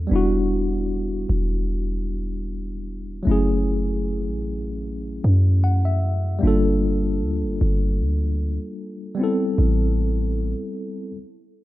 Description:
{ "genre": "contemporary R&B", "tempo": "76 BPM", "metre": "4/4", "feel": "swing 54% on 16ths", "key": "E minor", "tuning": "A4 = 439 Hz", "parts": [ { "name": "mellow tine electric piano", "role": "accompaniment", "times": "0.0-11.2 s", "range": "F#3 to F#5", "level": "-24 LUFS", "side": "left 1 dB", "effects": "medium stereo tremolo" }, { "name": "warm 808-style bass", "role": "bass", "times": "0.0-10.5 s", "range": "E1 to F#2", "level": "-22 LUFS", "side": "equal", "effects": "none" } ], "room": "light reverb, digital ambience", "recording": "rough home demo mix", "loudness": "-20 LUFS", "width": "side -16 dB against mid", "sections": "0.0-11.6 A section", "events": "tine electric piano fill 5.2-6.4; stop 11.2-11.6", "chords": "0.1 Em7; 3.3 F#m7; 6.4 Gm7; 9.2 Am7", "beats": "| 0.11 0.90 1.69 2.48 | 3.27 4.05 4.84 5.63 | 6.42 7.21 8.00 8.79 | 9.58 10.37 11.16" }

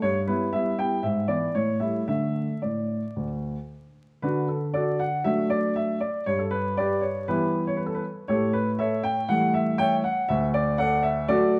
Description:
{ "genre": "classical-period piano sonatina", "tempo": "118 BPM", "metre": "4/4", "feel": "rubato", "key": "D major", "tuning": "A4 = 440 Hz", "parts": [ { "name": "warm baby grand piano", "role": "solo", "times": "0.0-11.6 s", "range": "D2 to G5", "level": "-25 LUFS", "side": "equal", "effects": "none" } ], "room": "moderate recital hall reverb, RT60 1.6 s", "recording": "vinyl crackle", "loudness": "-26 LUFS", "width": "mono", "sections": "0.0-4.2 A section; 4.2-11.6 B section", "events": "none", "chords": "0.0 Em/G; 1.0 E7/G#; 1.6 A7; 2.1 D5; 4.2 D; 6.3 Em/G; 8.3 A7; 10.3 D", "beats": "| 0.04 0.54 1.04 1.55 | 2.08 2.63 3.17 3.71 | 4.23 4.74 5.25 5.76 | 6.26 6.77 7.28 7.79 | 8.29 8.79 9.29 9.79 | 10.29 10.79 11.28" }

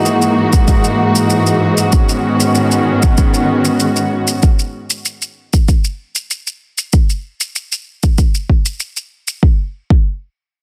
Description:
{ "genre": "organic downtempo", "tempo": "96 BPM", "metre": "4/4", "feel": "straight", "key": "unclear", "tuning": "A4 = 440 Hz", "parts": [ { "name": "muted studio string section", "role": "sustained chords", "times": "0.0-4.4 s", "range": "G#2 to F#4", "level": "-15 LUFS", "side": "equal", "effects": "sidechain pumping" }, { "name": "shaker", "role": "drums", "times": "0.1-9.4 s", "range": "none", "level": "-22 LUFS", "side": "equal", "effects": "none" }, { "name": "electronic kick drum", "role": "drums", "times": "0.5-10.1 s", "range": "none", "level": "-14 LUFS", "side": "equal", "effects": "none" } ], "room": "moderate echo chamber reverb, RT60 2.2 s", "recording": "dense, heavily limited modern master", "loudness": "-15 LUFS", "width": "mono", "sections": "0.0-9.4 A section; 9.4-10.6 B section", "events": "none", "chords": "0.0 F#13/G#; 1.9 B69/G#; 4.4 N.C.", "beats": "0.05 0.68 1.30 | 1.93 2.55 3.18 3.80 | 4.43 5.05 5.68 6.30 | 6.93 7.55 8.18 8.80 | 9.43 10.05" }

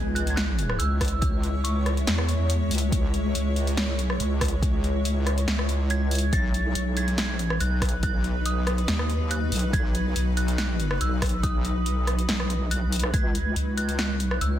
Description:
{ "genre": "deep dubstep", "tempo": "141 BPM", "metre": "4/4", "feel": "half-time", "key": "C# minor", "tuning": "A4 = 440 Hz", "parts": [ { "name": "dark detuned synth bell", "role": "melody", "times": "0.0-2.5, 5.9-14.6 s", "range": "C#6 to A6", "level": "-32 LUFS", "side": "right 2 dB", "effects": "chorus, dub echo" }, { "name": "granular cloud pad", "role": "sustained chords", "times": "0.0-14.6 s", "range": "F#3 to C#5", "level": "-32 LUFS", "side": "left 1 dB", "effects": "built-in reverb" }, { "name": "wobble bass", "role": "bass", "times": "0.0-14.6 s", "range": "B1 to E2", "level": "-25 LUFS", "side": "equal", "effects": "chorus, tube saturation" }, { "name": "impact", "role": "sound effects", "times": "0.0-1.2 s", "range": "none", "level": "-36 LUFS", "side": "equal", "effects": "none" }, { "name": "deep house drum kit", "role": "drums", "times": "0.2-14.5 s", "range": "hi-hat, rim click, snare drum", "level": "-29 LUFS", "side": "equal", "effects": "overdrive" }, { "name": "electronic kick drum", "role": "drums", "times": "1.0-13.2 s", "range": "none", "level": "-26 LUFS", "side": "equal", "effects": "overdrive" } ], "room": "light reverb", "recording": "dense, heavily limited modern master", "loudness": "-22 LUFS", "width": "side -11 dB against mid", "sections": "0.0-14.6 A section", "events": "impact 0.0-1.2", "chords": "0.0 C#m; 6.3 B; 13.1 C#m", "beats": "0.37 0.80 | 1.22 1.65 2.07 2.50 | 2.92 3.35 3.77 4.20 | 4.62 5.05 5.48 5.90 | 6.33 6.75 7.18 7.60 | 8.03 8.46 8.88 9.31 | 9.73 10.16 10.58 11.01 | 11.43 11.86 12.29 12.71 | 13.14 13.56 13.99 14.41" }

